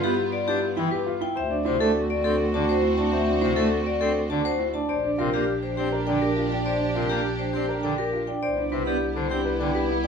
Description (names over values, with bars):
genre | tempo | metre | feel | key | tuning
classical, minimalist pattern music | 102 BPM | 3/4 | straight | unclear | A4 = 440 Hz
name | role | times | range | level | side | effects
vibraphone with hard mallets | melody | 0.0-10.1 s | G4 to A5 | -27 LUFS | left 6 dB | none
clear clarinet | second line | 0.0-10.1 s | D4 to F#4 | -32 LUFS | right 1 dB | none
pipe organ, full organ | accompaniment | 0.0-9.7 s | C3 to D4 | -30 LUFS | equal | none
rich studio violin section | sustained chords | 0.0-10.1 s | B3 to G4 | -32 LUFS | equal | none
warm concert grand piano | arpeggios | 0.0-10.1 s | D4 to C5 | -28 LUFS | right 4 dB | none
rich double bass | bass | 0.0-10.1 s | Bb1 to G2 | -30 LUFS | right 2 dB | none
room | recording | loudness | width
wet stone room reverb, RT60 1.0 s | minimal, uncompressed stereo recording | -22 LUFS | side -6 dB against mid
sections
0.0-10.1 A section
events
none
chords
0.0 G7; 1.4 D7; 4.9 Bb6; 8.4 Cmaj7